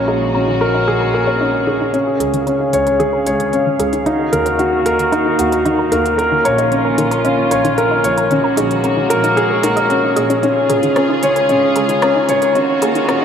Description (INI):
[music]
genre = piano and strings electronica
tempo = 113 BPM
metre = 4/4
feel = straight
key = unclear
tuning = A4 = 439 Hz
[part]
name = warm studio string section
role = sustained chords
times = 0.0-13.2 s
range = Db3 to F5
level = -20 LUFS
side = equal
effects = low-pass filter
[part]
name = warm grand piano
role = riff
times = 0.0-13.2 s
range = Db4 to Db5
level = -14 LUFS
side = equal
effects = tape echo
[part]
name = rich symphonic double bass section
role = bass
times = 0.0-13.0 s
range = Bb1 to Eb2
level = -24 LUFS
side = equal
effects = none
[part]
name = analog pluck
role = arpeggios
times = 0.1-13.2 s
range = Eb3 to Eb5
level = -23 LUFS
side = left 1 dB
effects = chorus, tape echo
[part]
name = organic electronic drum kit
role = drums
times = 1.9-13.2 s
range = hi-hat, rim click, toms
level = -26 LUFS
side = right 1 dB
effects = none
[sound]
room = wet cathedral reverb, RT60 5.5 s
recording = dreamy mix soaked in reverb, high-pass filter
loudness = -13 LUFS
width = side -8 dB against mid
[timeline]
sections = 0.0-1.9 A section; 1.9-13.2 B section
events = build-up 1.9-13.2; filter sweep on string section 1.9-13.2; filter sweep on synth arpeggio sound 1.9-13.2; filter sweep 1.9-13.2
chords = 0.0 Gbadd9/Bb; 1.9 Db; 4.1 Ebmadd9; 6.2 Bbm; 8.3 Gbadd9/Bb; 10.4 Db; 12.6 Ebmadd9